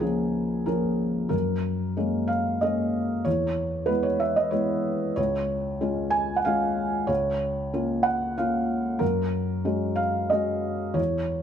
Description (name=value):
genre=neoclassical minimalist piano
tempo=93 BPM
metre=3/4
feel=rubato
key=unclear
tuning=A4 = 441 Hz
part: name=felt-muted upright piano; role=solo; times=0.0-11.4 s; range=Db2 to Ab5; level=-23 LUFS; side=equal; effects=none
room=moderate stone room reverb, RT60 1.3 s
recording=none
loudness=-23 LUFS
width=side -8 dB against mid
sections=0.0-11.4 A section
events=none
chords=0.0 Bbm/Db; 1.3 Gbadd9; 3.3 E6; 5.2 Db; 7.1 Bbm/Db; 9.0 Gbadd9